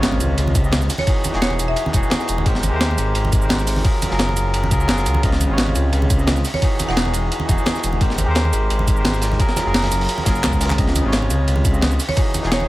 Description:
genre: liquid drum and bass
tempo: 173 BPM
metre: 4/4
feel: straight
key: Db major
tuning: A4 = 439 Hz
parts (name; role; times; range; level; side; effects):
- barky tine electric piano; accompaniment; 0.0-12.7 s; C3 to Eb5; -23 LUFS; equal; dub echo
- dark detuned saw bass; bass; 0.0-12.7 s; E1 to Eb2; -20 LUFS; equal; none
- breakbeat sampler-style drum kit; drums; 0.0-12.6 s; handclaps, hi-hat, shaker, snare drum; -22 LUFS; equal; none
- crunchy breakbeat drum kit; drums; 0.0-12.6 s; hi-hat, ride cymbal, snare drum; -29 LUFS; equal; high-pass filter on cymbals, high-pass filter on hats, high-pass filter on snare, high-pass filter on room, dub echo
- impact; sound effects; 0.0-1.1 s; none; -29 LUFS; equal; none
- congas; percussion; 0.1-12.7 s; none; -29 LUFS; right 2 dB; none
- electronic kick drum; drums; 0.6-12.2 s; none; -19 LUFS; equal; none
- marimba with medium hard mallets; melody; 1.0-2.0, 6.5-7.1, 12.1-12.7 s; Db5 to F#5; -28 LUFS; right 2 dB; dub echo
room: light reverb, small room reverb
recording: echo-heavy mix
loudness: -16 LUFS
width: side -17 dB against mid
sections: 0.0-12.7 A section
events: impact 0.0-1.1; drum fill 10.4-10.8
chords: 0.0 Dbmaj9; 0.9 Emaj9; 2.5 Abmaj9; 3.8 Gbmaj9; 5.2 Dbmaj9; 6.4 Emaj9; 8.0 Abmaj9; 9.4 Gbmaj9; 10.8 Dbmaj9; 12.0 Emaj9

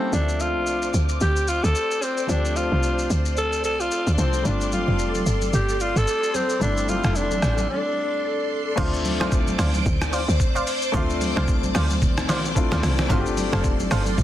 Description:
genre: amapiano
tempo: 111 BPM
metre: 4/4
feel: swing 58% on 16ths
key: D minor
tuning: A4 = 439 Hz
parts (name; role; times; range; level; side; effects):
- growling alto saxophone; melody; 0.0-8.5 s; C4 to A4; -25 LUFS; equal; digital delay
- clear baby grand piano; accompaniment; 0.0-14.2 s; F3 to E5; -30 LUFS; left 4 dB; none
- phased string machine; sustained chords; 0.0-14.2 s; A4 to D6; -30 LUFS; equal; ensemble chorus, phaser, sidechain pumping
- woody log drum bass; bass; 0.1-14.2 s; F1 to D2; -24 LUFS; equal; none
- trip hop sampler-style drum kit; drums; 0.1-14.2 s; crash cymbal, hi-hat, kick drum, rim click, shaker, snare drum; -26 LUFS; equal; soft clipping on snare
- congas; percussion; 4.5-14.2 s; none; -31 LUFS; right 2 dB; none
- analog pluck; stabs; 8.8-14.0 s; A4 to F5; -30 LUFS; right 3 dB; chorus, digital delay
room: little or no reverb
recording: dense, heavily limited modern master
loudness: -20 LUFS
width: side -12 dB against mid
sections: 0.1-8.8 A section; 8.8-14.2 B section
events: break 7.7-8.8; drop 8.8-14.2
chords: 0.1 Dm7; 4.5 G9sus4; 8.8 Dm7; 13.1 G9sus4

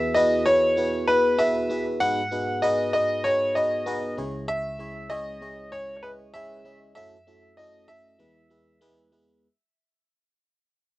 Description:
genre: pop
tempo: 97 BPM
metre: 4/4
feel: straight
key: E major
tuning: A4 = 436 Hz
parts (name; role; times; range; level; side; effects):
- clear grand piano; melody; 0.0-8.8 s; B4 to F#5; -23 LUFS; equal; none
- FM electric piano; accompaniment; 0.0-9.5 s; C#2 to E5; -29 LUFS; equal; chorus, phaser, cassette tape
room: moderate booth ambience, RT60 0.3 s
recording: home recording on cassette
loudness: -21 LUFS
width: side -18 dB against mid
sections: 0.0-9.4 A section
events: fade-out 0.0-9.4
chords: 0.0 Eadd9; 2.0 G#m7; 4.2 C#m; 7.0 F#m7; 8.2 E

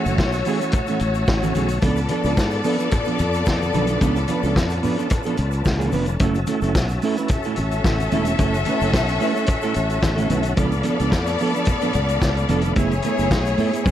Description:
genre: disco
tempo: 110 BPM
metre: 4/4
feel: straight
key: F# minor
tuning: A4 = 437 Hz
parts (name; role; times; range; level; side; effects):
- rich symphonic string section; second line; 0.0-13.9 s; A3 to E5; -24 LUFS; left 3 dB; none
- mellow electric guitar; accompaniment; 0.0-13.9 s; E3 to B4; -24 LUFS; right 4 dB; none
- tonewheel organ; sustained chords; 0.0-13.9 s; A3 to B5; -30 LUFS; left 1 dB; chorus vibrato, fast rotary speaker
- fingered electric bass; bass; 0.1-13.9 s; E1 to G#2; -23 LUFS; equal; none
- vintage drum kit; drums; 0.1-13.9 s; hi-hat, kick drum, snare drum, toms; -23 LUFS; equal; none
- egg shaker; percussion; 0.1-13.9 s; none; -44 LUFS; left 18 dB; none
- congas; percussion; 0.2-13.9 s; none; -31 LUFS; left 4 dB; none
room: studio reverb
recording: dark, warm production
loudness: -18 LUFS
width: side -11 dB against mid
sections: 0.0-13.9 A section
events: none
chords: 0.0 F#m7; 1.8 C#7b9b13; 6.2 F#m7; 10.6 C#7b9b13; 12.8 F#m11

